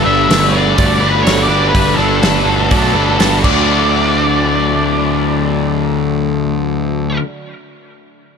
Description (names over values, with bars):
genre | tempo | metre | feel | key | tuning
rock, shoegaze and dream pop | 124 BPM | 4/4 | straight | D major | A4 = 437 Hz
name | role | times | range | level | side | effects
octave-fuzz lead guitar | melody | 0.0-7.2 s | A4 to E5 | -17 LUFS | left 1 dB | distortion, analog delay
direct-recorded clean electric guitar | arpeggios | 0.0-4.4 s | D4 to D5 | -24 LUFS | right 12 dB | analog chorus, analog delay
biting overdriven guitar | riff | 0.0-7.3 s | D3 to B4 | -17 LUFS | left 12 dB | wide subtle chorus
raw garage guitar | riff | 0.0-7.2 s | D3 to B4 | -19 LUFS | right 12 dB | overdrive, reverse reverb
fuzz picked electric bass | bass | 0.0-7.2 s | G1 to D2 | -18 LUFS | equal | overdrive
loose indie drum kit | drums | 0.3-3.6 s | crash cymbal, hi-hat, kick drum, snare drum | -17 LUFS | equal | none
room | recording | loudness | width
light reverb, small room ambience | none | -11 LUFS | side -6 dB against mid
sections
0.0-3.7 A section; 3.7-7.6 B section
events
none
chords
0.0 Gmaj9; 3.4 D